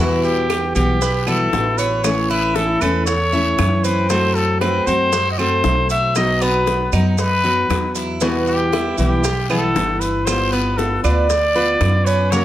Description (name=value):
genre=latin, Cuban son and guajira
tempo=117 BPM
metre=4/4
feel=straight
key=E harmonic minor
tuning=A4 = 444 Hz
part: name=warm trumpet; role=melody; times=0.0-12.4 s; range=F#4 to E5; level=-20 LUFS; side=equal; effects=none
part: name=nylon-string guitar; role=accompaniment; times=0.0-12.4 s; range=B2 to F#4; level=-22 LUFS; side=left 1 dB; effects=none
part: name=Cuban tres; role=arpeggios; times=0.0-12.4 s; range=A3 to E5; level=-24 LUFS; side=right 3 dB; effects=none
part: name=upright bass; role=bass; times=0.0-12.4 s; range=G1 to F#2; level=-21 LUFS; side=equal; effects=none
part: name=maracas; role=percussion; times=0.2-12.4 s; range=none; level=-31 LUFS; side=right 9 dB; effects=none
part: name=bongos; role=percussion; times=0.5-12.4 s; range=none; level=-27 LUFS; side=left 5 dB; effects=none
part: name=claves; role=percussion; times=0.5-12.1 s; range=none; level=-31 LUFS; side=right 9 dB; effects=none
part: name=guiro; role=percussion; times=0.5-12.4 s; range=none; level=-33 LUFS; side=left 6 dB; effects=none
room=light reverb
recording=none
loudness=-15 LUFS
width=side -13 dB against mid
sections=0.0-12.4 A section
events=none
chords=0.0 Emadd9; 2.0 A; 4.1 F#dim; 6.2 B; 8.2 Em; 10.3 G7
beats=0.50 1.01 1.53 | 2.04 2.56 3.07 3.59 | 4.10 4.62 5.13 5.65 | 6.16 6.67 7.19 7.70 | 8.22 8.73 9.25 9.76 | 10.27 10.79 11.30 11.81 | 12.33